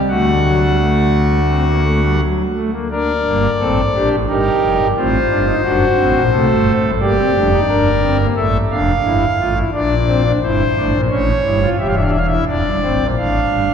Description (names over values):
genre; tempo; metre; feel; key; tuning
classical, baroque-style 4-part fugue for pipe organ; 87 BPM; 4/4; straight; G minor; A4 = 440 Hz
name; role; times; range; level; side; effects
pipe organ, foundations; solo; 0.1-13.7 s; E1 to F#5; -13 LUFS; equal; none
room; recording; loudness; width
wet church reverb, RT60 3.6 s; minimal, uncompressed stereo recording; -13 LUFS; side -7 dB against mid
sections
0.0-2.9 A section; 2.9-13.7 B section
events
none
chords
0.1 D; 2.9 Gm; 4.3 Cm; 5.6 D7/F#; 7.0 Gm; 8.4 Dm; 9.7 Gm/Bb; 11.1 A7; 12.5 Dm/F